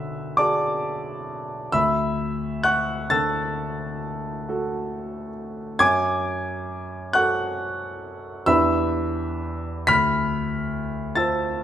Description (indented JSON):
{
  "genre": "classical, impressionist solo piano",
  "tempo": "41-48 BPM (dotted quarters)",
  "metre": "9/8",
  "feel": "rubato",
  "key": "unclear",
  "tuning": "A4 = 440 Hz",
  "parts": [
    { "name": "clear concert grand piano", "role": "solo", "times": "0.0-11.6 s", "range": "B1 to B6", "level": "-22 LUFS", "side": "equal", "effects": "none" }
  ],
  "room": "moderate recital hall reverb, RT60 1.4 s",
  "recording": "none",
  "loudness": "-21 LUFS",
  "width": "side -10 dB against mid",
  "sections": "0.0-11.6 A section",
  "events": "none",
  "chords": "0.0 Bm6; 1.7 Dmaj9; 5.8 F#m; 8.5 Em7; 9.9 Dm7",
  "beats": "0.37 | 1.73 3.10 4.48 | 5.80 7.14 8.47 | 9.88 11.16"
}